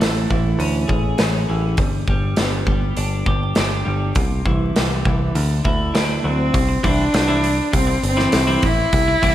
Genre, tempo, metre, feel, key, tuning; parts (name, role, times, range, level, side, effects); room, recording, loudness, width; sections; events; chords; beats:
quiet-loud alternative rock; 101 BPM; 4/4; straight; A4 = 441 Hz
twelve-string electric guitar; arpeggios; 0.0-9.3 s; G2 to G#4; -24 LUFS; equal; lush chorus, slapback echo
picked electric bass; bass; 0.0-9.3 s; G1 to D2; -21 LUFS; equal
big rock drum kit; drums; 0.0-9.3 s; hi-hat, kick drum, snare drum; -21 LUFS; equal
clear cello; melody; 6.2-9.3 s; A3 to E4; -18 LUFS; equal
moderate lush hall reverb, RT60 2.6 s; big arena sound, vinyl crackle; -16 LUFS; side -12 dB against mid
0.0-6.5 A section; 6.5-9.3 B section
0.0 Amaj7; 1.8 G; 4.2 C; 5.3 Dadd9; 6.5 C
0.02 0.61 1.20 | 1.79 2.38 2.97 3.57 | 4.16 4.75 5.35 5.95 | 6.54 7.14 7.73 8.33 | 8.93